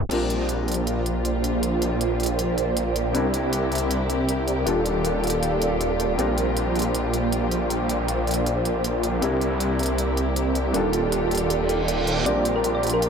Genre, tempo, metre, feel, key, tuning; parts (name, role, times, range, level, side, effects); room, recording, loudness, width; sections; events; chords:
future bass; 158 BPM; 4/4; swing 56% on 16ths, half-time; Bb major; A4 = 440 Hz
thumb-piano-like synth pluck; melody; 0.0, 12.3-13.1 s; Bb4 to D5; -26 LUFS; left 1 dB; chorus, digital delay
wide detuned saw bass; bass; 0.0-13.1 s; Eb1 to C2; -26 LUFS; equal; chorus
felt-muted upright piano; accompaniment; 0.1-13.1 s; G3 to Bb4; -30 LUFS; left 3 dB; digital delay
rich symphonic string section; sustained chords; 0.1-13.1 s; D3 to A4; -33 LUFS; left 1 dB
supersaw chords; riff; 0.1-13.1 s; Eb3 to G5; -24 LUFS; right 2 dB; phaser, low-pass filter, digital delay
pop drum kit; drums; 0.1-13.1 s; crash cymbal, hi-hat; -31 LUFS; right 1 dB; studio ambience
reverse cymbal; sound effects; 11.6-12.3 s; -30 LUFS; right 4 dB
light reverb; tape stop; -21 LUFS; side -6 dB against mid
0.1-13.1 A section
reverse cymbal 11.6-12.3
0.1 Bb6; 3.1 C9; 4.7 Ebmaj9#11; 6.2 Bb6; 9.2 C9; 10.7 Ebmaj9#11; 12.3 Bb6